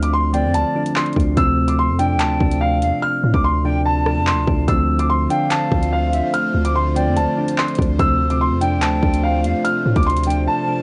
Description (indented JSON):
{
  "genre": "hip hop, drill",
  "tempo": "145 BPM",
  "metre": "4/4",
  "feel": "half-time",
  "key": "unclear",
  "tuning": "A4 = 440 Hz",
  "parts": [
    { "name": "warm concert grand piano", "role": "melody", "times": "0.0-10.8 s", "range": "F5 to F6", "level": "-23 LUFS", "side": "equal", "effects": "none" },
    { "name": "soft electric-piano-like synth keys", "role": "accompaniment", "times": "0.0-10.8 s", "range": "C3 to D4", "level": "-25 LUFS", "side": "equal", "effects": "chorus, cassette tape" },
    { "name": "long sustained 808-style bass", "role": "bass", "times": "0.0-10.5 s", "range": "D2 to A2", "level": "-22 LUFS", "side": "equal", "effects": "none" },
    { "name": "drill drum kit", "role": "drums", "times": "0.0-10.4 s", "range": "handclaps, hi-hat, kick drum, rim click", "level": "-23 LUFS", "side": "equal", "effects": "cassette tape" },
    { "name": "breathy bright jazz flute", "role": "second line", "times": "0.3-10.8 s", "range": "D5 to A5", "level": "-30 LUFS", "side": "equal", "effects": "cassette tape" },
    { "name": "airy breathy pad", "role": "sustained chords", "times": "4.9-10.8 s", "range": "C3 to C5", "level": "-29 LUFS", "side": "equal", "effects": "chorus, cassette tape" }
  ],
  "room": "little or no reverb",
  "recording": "home recording on cassette, nothing above 10.5 kHz",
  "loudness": "-18 LUFS",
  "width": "mono",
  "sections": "0.0-10.8 A section",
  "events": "hi-hats muted 3.0-4.7; silent gap 10.5-10.8",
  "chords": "0.0 Dm7; 1.4 F/D; 4.7 Dm7; 8.0 F/D"
}